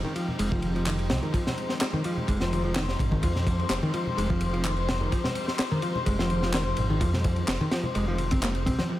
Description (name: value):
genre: breakbeat, breaks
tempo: 127 BPM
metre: 4/4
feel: straight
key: F minor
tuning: A4 = 439 Hz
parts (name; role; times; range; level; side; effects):
- dark studio string section; sustained chords; 0.0-9.0 s; F3 to C5; -33 LUFS; left 3 dB; vintage 12-bit sampler grit, sidechain pumping, low-pass filter
- modern bright picked electric bass; riff; 0.0-9.0 s; Eb3 to C4; -30 LUFS; equal; vintage 12-bit sampler grit, low-pass filter, analog delay
- congas and bongos; percussion; 0.0-8.9 s; none; -36 LUFS; left 1 dB; none
- crunchy breakbeat drum kit; drums; 0.2-8.9 s; kick drum, ride cymbal, snare drum; -29 LUFS; equal; none
- detuned saw bass; bass; 0.4-8.8 s; F1 to F2; -29 LUFS; equal; none
- electronic handclaps; drums; 0.9-8.5 s; none; -37 LUFS; equal; analog delay
room: light reverb, small room ambience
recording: echo-heavy mix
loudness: -24 LUFS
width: side -14 dB against mid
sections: 0.0-8.9 A section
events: none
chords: 0.0 Fm9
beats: 0.39 0.87 | 1.34 1.81 2.28 2.76 | 3.23 3.70 4.17 4.65 | 5.12 5.59 6.06 6.54 | 7.01 7.48 7.95 8.43 | 8.90